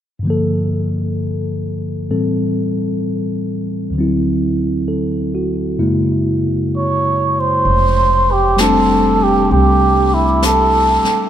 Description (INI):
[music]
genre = jazz ballad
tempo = 65 BPM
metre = 4/4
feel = swing 68% on 8ths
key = F major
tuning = A4 = 440 Hz
[part]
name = mellow tine electric piano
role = accompaniment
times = 0.2-11.3 s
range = D2 to A4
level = -17 LUFS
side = left 1 dB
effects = none
[part]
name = trumpet with cup mute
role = melody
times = 6.8-11.2 s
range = E4 to Db5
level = -13 LUFS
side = right 2 dB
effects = none
[part]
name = jazz brush drum kit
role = drums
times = 7.6-11.3 s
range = brushed snare drum, hi-hat, snare drum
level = -25 LUFS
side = left 2 dB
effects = none
[part]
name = upright bass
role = bass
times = 7.7-11.1 s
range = F1 to C2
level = -17 LUFS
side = equal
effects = none
[sound]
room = wet cathedral reverb, RT60 5.3 s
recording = in a vast, echoing space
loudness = -13 LUFS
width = side -10 dB against mid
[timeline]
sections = 0.2-7.6 A section; 7.6-11.3 B section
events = none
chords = 0.2 Gm7; 2.1 Am7; 3.9 D7; 5.8 Gb7; 7.6 F69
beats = | 0.24 1.16 2.08 3.00 | 3.92 4.84 5.77 6.71 | 7.64 8.57 9.50 10.42